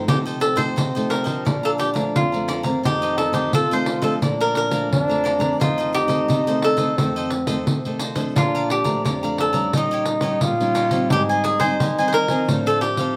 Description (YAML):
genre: samba and choro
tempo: 87 BPM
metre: 4/4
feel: straight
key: Bb major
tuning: A4 = 436 Hz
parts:
  - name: warm trombone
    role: second line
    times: 0.0-12.9 s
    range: C4 to F4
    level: -27 LUFS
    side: equal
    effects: none
  - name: cavaquinho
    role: accompaniment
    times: 0.0-13.2 s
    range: Eb4 to Bb5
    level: -31 LUFS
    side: equal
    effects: none
  - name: nylon-string guitar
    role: accompaniment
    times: 0.0-13.2 s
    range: F2 to Eb4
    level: -28 LUFS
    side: equal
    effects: none
  - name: cavaquinho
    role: melody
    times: 0.1-13.1 s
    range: Eb4 to C5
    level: -25 LUFS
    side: equal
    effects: none
  - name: pandeiro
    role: percussion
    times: 0.1-13.2 s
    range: none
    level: -27 LUFS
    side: equal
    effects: none
room: light reverb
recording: close, detailed microphones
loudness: -20 LUFS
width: mono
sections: 0.0-13.2 A section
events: none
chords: 0.1 F7/C; 1.5 Bbmaj7; 2.8 F7; 4.2 Bbmaj7; 5.6 F7; 8.4 Bbmaj7; 9.7 Eb7/Bb; 11.1 Abmaj7; 12.5 F7/A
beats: | 0.08 0.77 1.46 2.15 | 2.84 3.53 4.22 4.91 | 5.60 6.29 6.98 7.67 | 8.36 9.05 9.74 10.43 | 11.12 11.81 12.50